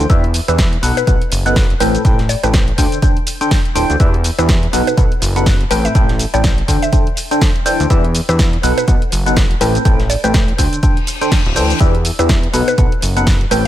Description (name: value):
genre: piano house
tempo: 123 BPM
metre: 4/4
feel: swing 58% on 16ths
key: E minor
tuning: A4 = 440 Hz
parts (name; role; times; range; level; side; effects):
- barking FM electric piano; riff; 0.0-13.7 s; A2 to G5; -18 LUFS; left 1 dB; phaser, sidechain pumping, ping-pong delay
- fat analog bass; bass; 0.0-13.7 s; D1 to E2; -17 LUFS; equal; sidechain pumping
- punchy analog drum machine; drums; 0.0-13.6 s; hi-hat, shaker, snare drum; -21 LUFS; equal; none
- electronic kick drum; drums; 0.1-13.4 s; none; -14 LUFS; equal; none
- mallet-like synth pluck; melody; 0.5-13.6 s; B4 to E5; -22 LUFS; equal; chorus, ping-pong delay
- reverse cymbal; sound effects; 11.0-11.8 s; none; -24 LUFS; left 5 dB; none
room: digital ambience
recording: none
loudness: -12 LUFS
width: side -12 dB against mid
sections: 0.0-13.7 A section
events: reverse cymbal 11.0-11.8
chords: 0.1 Em7; 0.8 B7; 1.8 Am9; 2.8 D7sus4; 4.0 Em7; 4.7 B7; 5.7 Am9; 6.7 D7sus4; 7.9 Em7; 8.6 B7; 9.6 Am9; 10.6 D7sus4; 11.8 Em7; 12.5 B7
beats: | 0.10 0.58 1.07 1.56 | 2.05 2.54 3.02 3.51 | 4.00 4.49 4.97 5.46 | 5.95 6.44 6.93 7.41 | 7.90 8.39 8.88 9.37 | 9.85 10.34 10.83 11.32 | 11.80 12.29 12.78 13.27